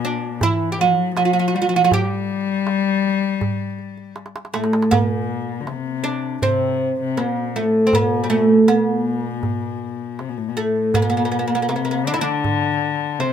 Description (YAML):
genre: Arabic maqam ensemble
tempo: 80 BPM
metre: 4/4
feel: straight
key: unclear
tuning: A4 = 440 Hz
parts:
  - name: oud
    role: melody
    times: 0.0-13.3 s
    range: G3 to G4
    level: -18 LUFS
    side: right 3 dB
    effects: none
  - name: dark cello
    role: second line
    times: 0.0-13.3 s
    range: A2 to G3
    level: -22 LUFS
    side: left 8 dB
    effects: none
  - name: darbuka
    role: percussion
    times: 0.4-13.3 s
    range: none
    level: -25 LUFS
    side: right 3 dB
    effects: none
room: light reverb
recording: minimal, uncompressed stereo recording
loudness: -17 LUFS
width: side -8 dB against mid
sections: 0.0-4.9 A section; 4.9-13.3 B section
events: drum fill 4.2-4.9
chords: none